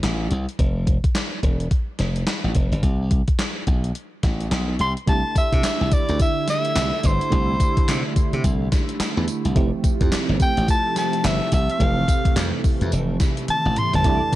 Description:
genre	R&B, new jack swing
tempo	107 BPM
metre	4/4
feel	swing 61% on 16ths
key	unclear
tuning	A4 = 440 Hz
part	glassy slap bass	bass	0.0-14.4 s	E1 to C3	-22 LUFS	equal	none
part	gated 80s digital drum machine	drums	0.0-14.4 s	handclaps, hi-hat, kick drum, snare drum, tambourine, toms	-21 LUFS	equal	gated reverb, gated reverb snare, overdrive, vintage 12-bit sampler grit
part	clear soprano saxophone	melody	4.8-14.4 s	C5 to C6	-24 LUFS	equal	none
part	FM electric piano with tremolo	accompaniment	5.1-14.4 s	E3 to G4	-28 LUFS	right 5 dB	none
part	phased analog pad	sustained chords	5.1-14.4 s	C3 to E4	-28 LUFS	equal	phaser, chorus
part	mellow synth brass	stabs	14.0-14.4 s	E4 to D5	-29 LUFS	right 2 dB	chorus
room	little or no reverb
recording	dark, warm production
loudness	-18 LUFS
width	side -15 dB against mid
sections	0.0-5.1 A section; 5.1-14.4 B section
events	drum fill 13.5-14.0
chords	0.0 N.C.; 0.6 Fmaj7(no3); 2.8 Amadd9; 5.1 C69; 9.6 Fmaj7

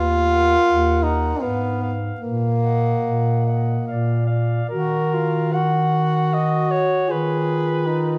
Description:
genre	classical, lyrical piece for single-reed quartet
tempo	70-79 BPM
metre	3/4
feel	rubato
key	Eb minor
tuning	A4 = 440 Hz
part	warm tenor saxophone	accompaniment	0.0-8.2 s	Bb3 to Ab4	-24 LUFS	equal	none
part	warm bass clarinet	bass	0.0-8.2 s	Eb2 to Eb3	-24 LUFS	equal	none
part	mellow soprano saxophone	melody	0.3-8.2 s	Bb4 to Gb5	-29 LUFS	equal	none
part	dark clarinet	second line	0.3-8.2 s	F4 to Eb5	-32 LUFS	equal	none
room	wet recital hall reverb, RT60 1.8 s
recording	dark, warm production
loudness	-20 LUFS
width	mono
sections	0.0-4.7 A section; 4.7-8.2 B section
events	none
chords	0.0 Ebm; 1.4 Fdim/Ab; 2.2 Ebm/Bb; 4.7 Ebm; 7.1 Fm7b5/Eb

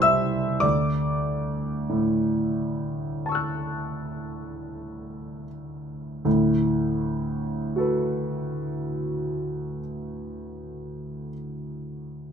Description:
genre	classical, impressionist solo piano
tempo	38-52 BPM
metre	4/4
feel	rubato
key	D major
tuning	A4 = 438 Hz
part	clear concert grand piano	solo	0.0-12.3 s	C2 to F#6	-24 LUFS	equal	none
room	moderate studio reverb, RT60 0.7 s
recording	minimal, uncompressed stereo recording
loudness	-24 LUFS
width	side -7 dB against mid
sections	0.0-6.2 A section; 6.2-12.2 B section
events	slowing down 0.0-6.2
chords	0.0 Cadd9; 0.6 Dmaj9; 6.2 D6

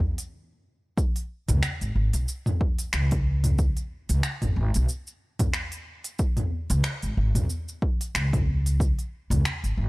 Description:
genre	organic downtempo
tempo	92 BPM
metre	4/4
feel	swing 57% on 16ths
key	C# minor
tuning	A4 = 440 Hz
part	upright bass	bass	0.0-9.9 s	G#1 to E2	-24 LUFS	equal	sidechain pumping
part	electronic kick drum	drums	0.0-8.9 s	none	-25 LUFS	equal	none
part	organic electronic drum kit	drums	0.2-9.8 s	finger snaps, hi-hat, shaker, toms	-29 LUFS	equal	overdrive
room	little or no reverb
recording	dry, gritty hardware recording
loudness	-23 LUFS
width	side -23 dB against mid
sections	1.0-9.9 A section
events	stop 0.3-1.0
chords	none

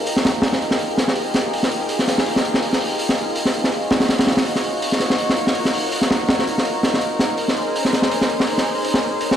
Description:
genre	drum and bass, jungle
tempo	164 BPM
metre	4/4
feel	swing 55% on 16ths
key	F minor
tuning	A4 = 436 Hz
part	lush unison pad	sustained chords	0.0-9.4 s	Db4 to Db5	-22 LUFS	equal	chorus
part	crunchy breakbeat drum kit	drums	0.1-9.4 s	hi-hat, snare drum	-18 LUFS	equal	none
room	moderate echo chamber reverb, RT60 2.2 s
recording	played on a big sound system in a bare room, stone room reverb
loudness	-17 LUFS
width	side -9 dB against mid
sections	0.0-9.4 A section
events	none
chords	0.0 Fm11; 3.7 Ebm11; 7.4 Bbm11

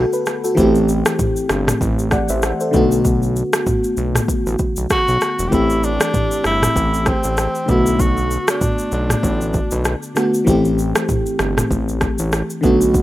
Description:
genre	afrobeats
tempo	97 BPM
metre	4/4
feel	swing 58% on 16ths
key	A dorian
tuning	A4 = 439 Hz
part	FM electric piano	accompaniment	0.0-13.0 s	D3 to F#5	-18 LUFS	left 1 dB	chorus
part	fat analog bass	bass	0.0-13.0 s	E1 to B1	-20 LUFS	equal	none
part	afro-pop drum kit	drums	0.1-13.0 s	kick drum, rim click, shaker, toms	-20 LUFS	equal	none
part	clear tenor saxophone	melody	4.9-10.1 s	C4 to G4	-21 LUFS	equal	none
room	little or no reverb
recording	rough home demo mix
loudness	-15 LUFS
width	side -15 dB against mid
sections	0.0-13.0 A section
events	none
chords	0.0 Bm7; 0.6 Am7; 2.7 Bm7; 5.5 Am7; 7.7 Bm7; 10.5 Am7

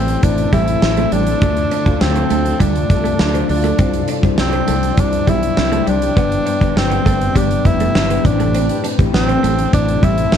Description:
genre	1980s-style pop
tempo	101 BPM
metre	4/4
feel	straight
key	A minor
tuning	A4 = 440 Hz
part	clear tenor saxophone	melody	0.0-10.4 s	C4 to E4	-20 LUFS	right 1 dB	none
part	mellow tine electric piano	accompaniment	0.0-10.4 s	G2 to F5	-21 LUFS	left 11 dB	none
part	shimmering ambient pad	sustained chords	0.0-10.4 s	D4 to A5	-27 LUFS	equal	chorus, built-in reverb
part	twelve-string electric guitar	riff	0.0-10.4 s	G3 to D4	-24 LUFS	right 4 dB	ensemble chorus, tape echo
part	sustaining fretless electric bass	bass	0.0-10.4 s	F1 to D2	-20 LUFS	right 1 dB	ensemble chorus
part	big rock drum kit	drums	0.1-10.4 s	hi-hat, kick drum, snare drum	-17 LUFS	right 1 dB	none
room	moderate studio reverb, RT60 0.6 s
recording	dark, warm production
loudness	-13 LUFS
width	side -8 dB against mid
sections	0.0-10.4 A section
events	none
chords	0.0 Am; 1.4 Dm; 3.8 Cadd9; 6.2 G; 8.2 Am

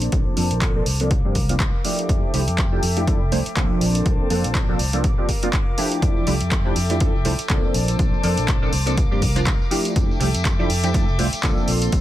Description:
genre	filtered disco house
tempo	122 BPM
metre	4/4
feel	swing 57% on 16ths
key	F major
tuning	A4 = 444 Hz
part	funky polysynth comp	accompaniment	0.0-12.0 s	F3 to C5	-24 LUFS	right 1 dB	chorus, phaser, vintage 12-bit sampler grit, sidechain pumping, low-pass filter
part	warm studio violin section	sustained chords	0.0-12.0 s	A4 to D6	-30 LUFS	left 2 dB	sidechain pumping, low-pass filter
part	fingered electric bass	bass	0.0-12.0 s	F1 to Bb2	-23 LUFS	equal	tube saturation, sidechain pumping, low-pass filter
part	punchy analog drum machine	drums	0.0-12.0 s	handclaps, hi-hat	-27 LUFS	right 1 dB	sidechain pumping on hats, sidechain pumping on cymbals
part	electronic kick drum	drums	0.1-12.0 s	none	-21 LUFS	equal	none
part	tambourine	percussion	6.0-12.0 s	none	-38 LUFS	left 1 dB	sidechain pumping on perc, low-pass filter on perc
room	little or no reverb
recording	none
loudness	-18 LUFS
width	side -13 dB against mid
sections	0.0-12.0 A section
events	filter sweep 0.0-12.0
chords	0.0 Bbmaj9; 1.1 C9sus4; 2.1 Fmaj13; 3.8 Bbmaj9; 5.0 C9sus4; 6.0 Fmaj13; 7.7 Bbmaj9; 9.0 C9sus4; 10.0 Fmaj13

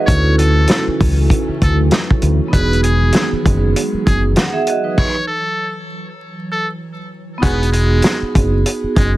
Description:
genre	hip hop, boom-bap hip-hop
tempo	98 BPM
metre	4/4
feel	swing 59% on 16ths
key	E major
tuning	A4 = 440 Hz
part	vibraphone with medium hard mallets	accompaniment	0.0-9.2 s	B3 to F#5	-19 LUFS	right 3 dB	high-pass filter, low-pass filter
part	hollow soft pad	sustained chords	0.0-7.4 s	C#3 to C#4	-26 LUFS	equal	ensemble chorus, high-pass filter, low-pass filter
part	trumpet with metal mute	melody	0.1-9.1 s	G#3 to C#5	-22 LUFS	left 1 dB	high-pass filter, low-pass filter, tape echo
part	deep dub fingered electric bass	bass	0.1-9.2 s	E1 to D2	-15 LUFS	equal	none
part	warm soul drum kit	drums	0.1-9.1 s	crash cymbal, hi-hat, kick drum, snare drum	-16 LUFS	equal	none
part	warm horn section	stabs	7.4-7.6 s	G#3 to B4	-30 LUFS	left 2 dB	high-pass filter, low-pass filter, tape echo
room	little or no reverb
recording	dense, heavily limited modern master, vinyl crackle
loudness	-13 LUFS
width	side -16 dB against mid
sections	0.0-7.4 A section; 7.4-9.2 B section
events	stop 5.0-7.4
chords	0.1 Dmaj9; 2.5 Emaj9; 5.0 Esus24; 7.4 Emaj9

